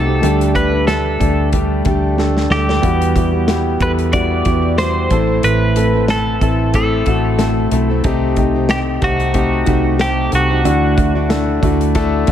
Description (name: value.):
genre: piano-driven pop.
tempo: 92 BPM.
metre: 4/4.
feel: swing 56% on 16ths.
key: G major.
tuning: A4 = 438 Hz.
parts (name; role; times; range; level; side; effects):
twelve-string electric guitar; melody; 0.0-12.3 s; F#4 to D5; -20 LUFS; equal; spring reverb, tape echo.
warm concert grand piano; accompaniment; 0.0-12.3 s; A2 to B4; -19 LUFS; left 5 dB; none.
fingerpicked plugged-in steel-string acoustic guitar; riff; 0.0-12.3 s; A2 to D5; -22 LUFS; right 8 dB; none.
vintage muted fingered electric bass; bass; 0.0-12.3 s; A1 to E2; -18 LUFS; equal; none.
modern studio drum kit; drums; 0.2-12.3 s; hi-hat, kick drum, snare drum; -20 LUFS; equal; none.
room: small room ambience.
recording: none.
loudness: -13 LUFS.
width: side -10 dB against mid.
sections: 0.0-12.3 A section.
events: drum fill 2.2-2.8.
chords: 0.2 Gsus2/D; 2.8 Emadd9; 5.1 Am; 8.0 Cm6; 10.7 Dadd9.